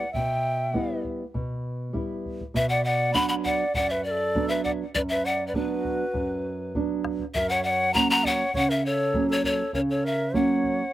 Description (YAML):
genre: andean folk, Andean ensemble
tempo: 100 BPM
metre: 4/4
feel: straight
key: B harmonic minor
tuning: A4 = 440 Hz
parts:
  - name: breathy pan flute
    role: melody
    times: 0.0-10.9 s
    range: B4 to B5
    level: -26 LUFS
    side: left 2 dB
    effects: slapback echo
  - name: breathy large quena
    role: second line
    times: 0.0-10.9 s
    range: F#4 to F#5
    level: -30 LUFS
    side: right 2 dB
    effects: none
  - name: nylon-string guitar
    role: accompaniment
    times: 0.0-10.8 s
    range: F#2 to E4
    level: -28 LUFS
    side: right 2 dB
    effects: none
  - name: bombo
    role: percussion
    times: 0.1-10.8 s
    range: none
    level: -36 LUFS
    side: left 1 dB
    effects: none
room: light reverb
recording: recorded outdoors, with no room sound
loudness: -23 LUFS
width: side -14 dB against mid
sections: 0.0-7.3 A section; 7.3-10.9 A section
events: none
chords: 0.0 Em; 2.6 Bm; 7.3 F#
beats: | 0.15 0.75 1.35 1.95 | 2.55 3.15 3.75 4.35 | 4.95 5.55 6.15 6.75 | 7.34 7.94 8.54 9.14 | 9.74 10.34